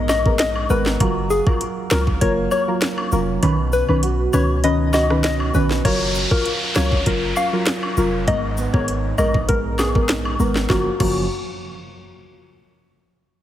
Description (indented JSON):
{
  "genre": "dancehall",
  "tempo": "99 BPM",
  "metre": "4/4",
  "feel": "straight",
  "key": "F# major",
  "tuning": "A4 = 441 Hz",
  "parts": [
    { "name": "deep mellow chord stab", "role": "accompaniment", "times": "0.0-11.2 s", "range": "D#3 to B4", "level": "-23 LUFS", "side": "equal", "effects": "chorus, low-pass filter" },
    { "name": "nylon-string guitar", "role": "arpeggios", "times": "0.0-11.8 s", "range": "F#2 to A#4", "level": "-27 LUFS", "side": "right 5 dB", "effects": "low-pass filter, ping-pong delay" },
    { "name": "warm 808-style bass", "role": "bass", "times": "0.0-11.3 s", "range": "E#1 to C#2", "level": "-23 LUFS", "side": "equal", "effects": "none" },
    { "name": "soft struck synth lead", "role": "melody", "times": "0.1-11.3 s", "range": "F#4 to E#5", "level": "-24 LUFS", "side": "left 3 dB", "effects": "chorus, low-pass filter, ping-pong delay" },
    { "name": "island pop drum kit", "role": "drums", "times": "0.1-11.2 s", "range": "crash cymbal, finger snaps, hi-hat, kick drum, rim click, snare drum", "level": "-22 LUFS", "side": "equal", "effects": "none" },
    { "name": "cabasa and woodblock", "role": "percussion", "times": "0.1-11.3 s", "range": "none", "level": "-30 LUFS", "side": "left 2 dB", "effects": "none" },
    { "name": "downlifter", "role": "sound effects", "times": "5.8-10.7 s", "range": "none", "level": "-27 LUFS", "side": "equal", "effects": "none" }
  ],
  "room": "light reverb",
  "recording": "heavily compressed radio sound, multiband compression",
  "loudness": "-17 LUFS",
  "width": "side -12 dB against mid",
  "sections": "0.0-5.8 A section; 5.8-10.7 B section; 10.7-13.1 C section",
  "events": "kick muted 3.4-5.8",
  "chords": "0.0 G#madd9; 1.0 F#maj7; 3.4 Badd9; 5.8 F#maj7; 8.3 G#madd9; 10.7 F#maj7"
}